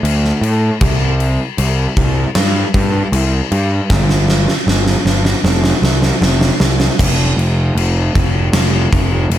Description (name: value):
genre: rock, shoegaze and dream pop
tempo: 78 BPM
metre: 4/4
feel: straight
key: F major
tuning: A4 = 441 Hz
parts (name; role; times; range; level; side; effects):
- fuzz picked electric bass; bass; 0.0-9.4 s; F1 to A2; -14 LUFS; equal; overdrive
- gated 80s drum kit; drums; 0.0-9.4 s; crash cymbal, kick drum, snare drum; -16 LUFS; equal; none
room: light reverb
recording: none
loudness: -12 LUFS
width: side -12 dB against mid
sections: 0.0-7.0 A section; 7.0-9.4 B section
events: drum fill 3.9-7.0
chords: none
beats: 0.03 | 0.81 1.58 2.35 3.12 | 3.90 4.67 5.44 6.21 | 6.99 7.76 8.53 9.31